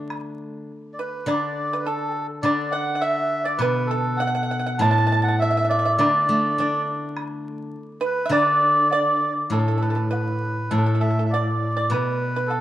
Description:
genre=chinese traditional, Chinese chamber ensemble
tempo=102 BPM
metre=2/4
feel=rubato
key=D gong mode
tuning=A4 = 440 Hz
part: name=steel-string zither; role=accompaniment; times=0.0-12.6 s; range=A2 to D4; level=-24 LUFS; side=left 1 dB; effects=none
part: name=woodblock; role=percussion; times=0.1-12.6 s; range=none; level=-36 LUFS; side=left 1 dB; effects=none
part: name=melodica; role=melody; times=0.9-12.6 s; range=A4 to A5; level=-23 LUFS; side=equal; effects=none
part: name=pipa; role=second line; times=1.0-12.6 s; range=A4 to A5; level=-26 LUFS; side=right 4 dB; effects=none
room=wet spring reverb, RT60 2.0 s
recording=heard from further back in the room, vinyl crackle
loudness=-19 LUFS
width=side -13 dB against mid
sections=0.1-9.5 A section; 9.5-12.6 B section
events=none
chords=none

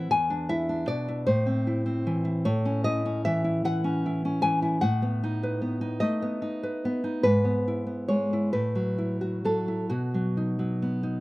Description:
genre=romantic piece for solo classical guitar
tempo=43-52 BPM (dotted quarters)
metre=6/8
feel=rubato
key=unclear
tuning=A4 = 443 Hz
part: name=nylon-string guitar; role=solo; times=0.0-11.2 s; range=E2 to G#5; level=-24 LUFS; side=equal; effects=none
room=light reverb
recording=recorded outdoors, with no room sound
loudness=-24 LUFS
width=side -19 dB against mid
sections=0.0-11.2 A section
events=none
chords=0.1 E5; 1.3 Am; 2.5 F#m7/A; 4.8 B7/A; 7.2 E/G#; 8.5 F#m7/A; 9.9 B

